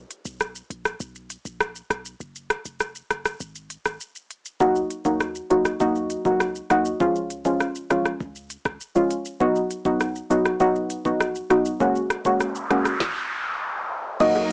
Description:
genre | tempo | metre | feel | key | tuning
dancehall | 100 BPM | 4/4 | straight | unclear | A4 = 440 Hz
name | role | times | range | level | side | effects
clean 808-style bass | bass | 0.0-14.5 s | F1 to Eb2 | -40 LUFS | equal | none
island pop drum kit | drums | 0.1-14.5 s | crash cymbal, hi-hat, kick drum, rim click, shaker, snare drum | -27 LUFS | equal | none
deep mellow chord stab | accompaniment | 4.6-14.4 s | F3 to Gb4 | -20 LUFS | equal | chorus, cassette tape
noise sweep | sound effects | 12.2-14.2 s | none | -28 LUFS | equal | none
soft round pluck | melody | 14.2-14.4 s | Eb5 | -19 LUFS | equal | chorus, cassette tape
glassy FM pad | sustained chords | 14.4-14.5 s | Gb3 to Eb4 | -28 LUFS | right 1 dB | ensemble chorus, built-in reverb, phaser, sidechain pumping, cassette tape
bongos | percussion | 14.4-14.5 s | none | -30 LUFS | equal | none
room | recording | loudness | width
light reverb | home recording on cassette, small speaker sound | -21 LUFS | side -31 dB against mid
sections
0.0-14.2 A section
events
break 0.0-4.6; noise sweep 12.2-14.2; stop 13.0-14.2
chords
0.0 N.C.; 2.2 Gbsus2; 4.6 Ebm; 7.0 Db; 9.4 B; 11.8 Gbadd9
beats
0.40 1.00 1.60 | 2.20 2.80 3.40 4.00 | 4.60 5.20 5.80 6.40 | 7.00 7.60 8.20 8.80 | 9.40 10.00 10.60 11.20 | 11.80 12.40 13.00 13.60 | 14.20

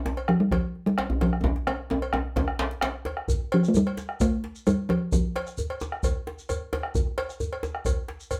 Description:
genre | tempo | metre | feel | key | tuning
west african traditional, West African drum ensemble | 131 BPM | 4/4 | straight | F major pentatonic | A4 = 440 Hz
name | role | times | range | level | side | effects
talking drum | melody | 0.0-6.0 s | F3 to A3 | -26 LUFS | equal | none
bombo | percussion | 0.1-8.0 s | none | -31 LUFS | equal | none
djembe | percussion | 0.1-8.4 s | none | -35 LUFS | equal | none
djembe | percussion | 0.1-2.9 s | none | -30 LUFS | equal | none
cowbell | percussion | 0.2-8.4 s | none | -36 LUFS | equal | none
shekere | percussion | 3.3-8.4 s | none | -39 LUFS | equal | none
room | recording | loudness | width
moderate studio reverb, RT60 0.5 s | band playing live in one room | -27 LUFS | mono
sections
0.0-3.3 A section; 3.3-8.4 B section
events
drum fill 1.4-3.3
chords
none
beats
0.06 0.52 0.98 | 1.45 1.91 2.37 2.83 | 3.29 3.75 4.21 4.67 | 5.13 5.58 6.04 6.50 | 6.95 7.41 7.86 8.31

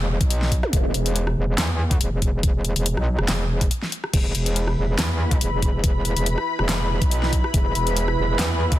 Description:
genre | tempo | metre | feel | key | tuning
heavy wobble dubstep | 141 BPM | 4/4 | swing 54% on 16ths, half-time | unclear | A4 = 438 Hz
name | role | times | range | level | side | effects
metallic wobble bass | bass | 0.0-8.8 s | E1 to E2 | -22 LUFS | equal | chorus, overdrive
dubstep drum kit | drums | 0.2-8.8 s | crash cymbal, handclaps, hi-hat, rim click, snare drum | -26 LUFS | left 1 dB | overdrive
electronic kick drum | drums | 0.2-8.8 s | none | -21 LUFS | equal | overdrive
zap | sound effects | 0.6-0.7 s | none | -29 LUFS | right 1 dB | none
lush unison pad | sustained chords | 4.4-8.8 s | E4 to B5 | -27 LUFS | equal | chorus, phaser, sidechain pumping
room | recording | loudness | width
little or no reverb | dense, heavily limited modern master | -19 LUFS | side -14 dB against mid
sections
0.0-8.8 A section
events
break 3.7-4.1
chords
0.0 E5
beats
0.30 | 0.73 1.16 1.58 2.01 | 2.43 2.86 3.28 3.71 | 4.13 4.56 4.99 5.41 | 5.84 6.26 6.69 7.11 | 7.54 7.96 8.39

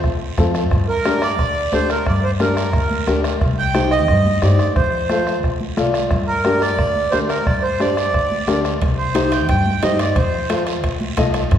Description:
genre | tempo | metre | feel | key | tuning
latin, cumbia | 178 BPM | 4/4 | straight | G minor | A4 = 438 Hz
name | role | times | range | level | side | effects
upright bass | bass | 0.0-11.6 s | C2 to G2 | -22 LUFS | left 1 dB | none
bombo | percussion | 0.0-11.6 s | none | -22 LUFS | equal | none
guiro | percussion | 0.0-11.6 s | none | -34 LUFS | right 6 dB | none
dark upright piano | accompaniment | 0.4-11.4 s | C4 to Eb5 | -22 LUFS | left 3 dB | none
congas | percussion | 0.4-11.3 s | none | -28 LUFS | equal | none
accordion | melody | 0.9-10.6 s | Bb4 to G5 | -20 LUFS | right 3 dB | none
timbales | percussion | 8.8-11.6 s | none | -32 LUFS | right 4 dB | none
room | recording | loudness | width
wet recital hall reverb, RT60 1.4 s | recorded in a church or concert hall | -15 LUFS | side -9 dB against mid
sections
0.0-11.6 A section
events
none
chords
0.0 F; 0.7 Gm; 3.4 Cm; 4.8 F; 6.1 Gm; 8.8 Cm; 10.2 F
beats
0.04 0.38 | 0.72 1.05 1.39 1.73 | 2.06 2.40 2.74 3.08 | 3.41 3.75 4.09 4.42 | 4.76 5.10 5.44 5.77 | 6.11 6.45 6.79 7.12 | 7.46 7.80 8.13 8.47 | 8.81 9.15 9.48 9.82 | 10.16 10.50 10.84 11.17 | 11.51

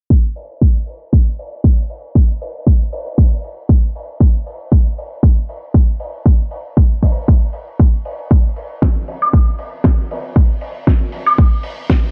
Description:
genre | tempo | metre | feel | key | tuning
nu-disco, nu disco | 117 BPM | 4/4 | swing 54% on 16ths | none | none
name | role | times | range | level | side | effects
electronic kick drum | drums | 0.1-12.0 s | none | -13 LUFS | equal | none
damped 70s drum kit | drums | 0.4-12.0 s | hi-hat, snare drum, woodblock | -24 LUFS | equal | none
room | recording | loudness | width
little or no reverb | low-pass filter, nothing above 10.7 kHz | -15 LUFS | mono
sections
0.1-12.1 A section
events
filter sweep 0.1-12.1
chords
none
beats
| 0.10 0.62 1.13 1.64 | 2.15 2.67 3.18 3.69 | 4.21 4.72 5.23 5.75 | 6.26 6.77 7.28 7.80 | 8.31 8.82 9.33 9.85 | 10.36 10.87 11.39 11.90

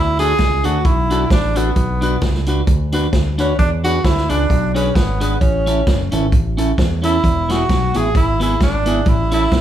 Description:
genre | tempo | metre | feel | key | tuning
ska | 132 BPM | 4/4 | swing 56% on 8ths | A major | A4 = 442 Hz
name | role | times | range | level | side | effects
breathy tenor saxophone | melody | 0.0-9.6 s | B3 to G#4 | -19 LUFS | equal | none
fingered electric bass | bass | 0.0-9.6 s | E1 to E2 | -19 LUFS | equal | none
clean electric guitar | accompaniment | 0.2-9.5 s | B3 to B4 | -22 LUFS | right 2 dB | none
swinging big-band drum kit | drums | 0.2-9.6 s | hi-hat, kick drum, snare drum | -18 LUFS | equal | none
clean electric guitar | riff | 7.2-9.6 s | E2 to B2 | -25 LUFS | left 10 dB | dub echo
room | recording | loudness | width
small room ambience | studio reverb | -14 LUFS | side -11 dB against mid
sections
0.0-9.6 A section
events
none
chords
0.0 D; 1.8 Bm; 3.6 E7; 5.4 A; 7.2 E; 9.1 A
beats
0.39 0.85 1.30 | 1.76 2.22 2.67 3.13 | 3.59 4.04 4.50 4.96 | 5.41 5.87 6.33 6.78 | 7.24 7.70 8.15 8.61 | 9.06 9.52

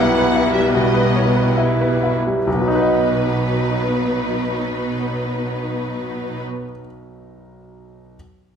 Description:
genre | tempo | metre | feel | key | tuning
classical, romantic movement for piano and orchestra | 63-83 BPM | 4/4 | rubato | B major | A4 = 440 Hz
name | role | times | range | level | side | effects
bright grand piano | melody | 0.0-8.2 s | B1 to D#5 | -20 LUFS | equal | none
warm symphonic violin section | melody | 0.0-6.4 s | B4 to F#5 | -28 LUFS | left 2 dB | none
dark symphonic violin section | second line | 0.0-6.4 s | D#4 to B4 | -26 LUFS | left 2 dB | none
warm symphonic viola section | accompaniment | 0.0-6.4 s | F#3 to B3 | -24 LUFS | equal | none
dark symphonic cello section | bass | 0.0-6.4 s | B2 | -24 LUFS | right 2 dB | none
room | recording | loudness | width
wet recital hall reverb, RT60 1.4 s | minimal, uncompressed stereo recording | -16 LUFS | side -7 dB against mid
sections
0.0-2.5 A section; 2.5-5.7 B section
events
slowing down 0.0-2.5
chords
0.0 Em/B; 2.5 B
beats
0.73 1.57 | 2.46 3.26 4.06 4.85

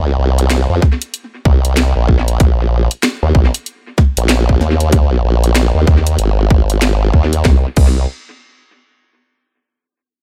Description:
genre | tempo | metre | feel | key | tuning
glitch hop | 95 BPM | 4/4 | swing 62% on 16ths | unclear | A4 = 440 Hz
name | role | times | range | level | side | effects
formant-sweep wobble bass | bass | 0.0-8.1 s | Ab1 to F2 | -15 LUFS | equal | chorus, tube saturation
drum and bass drum kit | drums | 0.4-7.9 s | crash cymbal, hi-hat, snare drum | -22 LUFS | equal | overdrive, tape echo
electronic kick drum | drums | 0.8-7.9 s | none | -13 LUFS | equal | overdrive
room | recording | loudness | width
little or no reverb | echo-heavy mix | -13 LUFS | mono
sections
0.0-7.5 A section; 7.5-10.0 B section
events
none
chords
none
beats
0.51 1.14 1.77 | 2.40 3.03 3.66 4.29 | 4.93 5.56 6.19 6.82 | 7.45

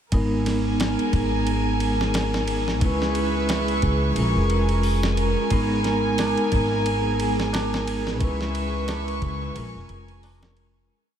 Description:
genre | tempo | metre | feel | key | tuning
trip hop | 89 BPM | 4/4 | swing 57% on 16ths | G# minor | A4 = 440 Hz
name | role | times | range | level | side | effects
vibraphone with soft mallets | accompaniment | 0.1-10.9 s | G#3 to B4 | -25 LUFS | equal | tremolo, vintage 12-bit sampler grit, tape echo
dark chamber violin section | sustained chords | 0.1-10.9 s | A#4 to C#6 | -28 LUFS | right 1 dB | none
upright bass | bass | 0.1-10.9 s | E#1 to C#2 | -26 LUFS | equal | none
dusty soul sampler-style drum kit | drums | 0.1-10.8 s | hi-hat, kick drum, ride cymbal, snare drum | -28 LUFS | equal | studio ambience
backwards swelling texture | texture | 1.1-10.9 s | G#4 | -35 LUFS | right 1 dB | built-in reverb
tabla | percussion | 6.2-10.4 s | none | -40 LUFS | right 4 dB | none
room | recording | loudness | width
moderate huge ambient reverb, RT60 7.2 s | dreamy mix soaked in reverb | -20 LUFS | side -9 dB against mid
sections
0.1-10.9 groove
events
fade-out 7.3-10.9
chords
0.1 G#madd9; 2.8 C#m7; 4.2 A#m7; 5.5 G#madd9; 8.2 C#m7; 9.6 A#m7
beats
| 0.12 0.79 1.47 2.14 | 2.82 3.49 4.16 4.84 | 5.51 6.19 6.86 7.54 | 8.21 8.88 9.56 10.23

